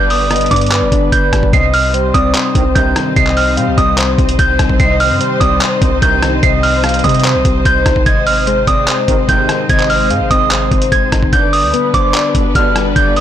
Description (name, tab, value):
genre	hip hop, trap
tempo	147 BPM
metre	4/4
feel	half-time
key	C harmonic minor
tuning	A4 = 438 Hz
part	delicate synth tine bell	melody	0.0-13.2 s	D6 to C7	-16 LUFS	right 2 dB	chorus, low-pass filter, digital delay
part	breathy flute-like synth lead	second line	0.0-13.2 s	B4 to F5	-20 LUFS	right 4 dB	chorus, digital delay
part	warbly lo-fi synth keys	accompaniment	0.0-13.2 s	C3 to D5	-18 LUFS	left 4 dB	chorus, low-pass filter
part	dark symphonic string section	sustained chords	0.0-13.2 s	G3 to C5	-22 LUFS	left 3 dB	none
part	warm 808-style bass	bass	0.0-13.2 s	F1 to C3	-18 LUFS	equal	none
part	lo-fi sampler-style drum kit	drums	0.1-13.2 s	handclaps, hi-hat, kick drum, rim click	-15 LUFS	equal	soft clipping on snare
part	warm brass ensemble	stabs	2.6-3.1, 5.8-6.4, 9.1-9.7, 12.3-12.9 s	G2 to Eb3	-22 LUFS	right 7 dB	none
room	light reverb, digital ambience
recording	blown-out, overdriven recording, overdrive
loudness	-10 LUFS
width	side -10 dB against mid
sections	0.0-1.5 A section; 1.5-13.2 A section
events	none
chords	0.0 G; 1.5 Cm; 8.1 Ab; 11.3 G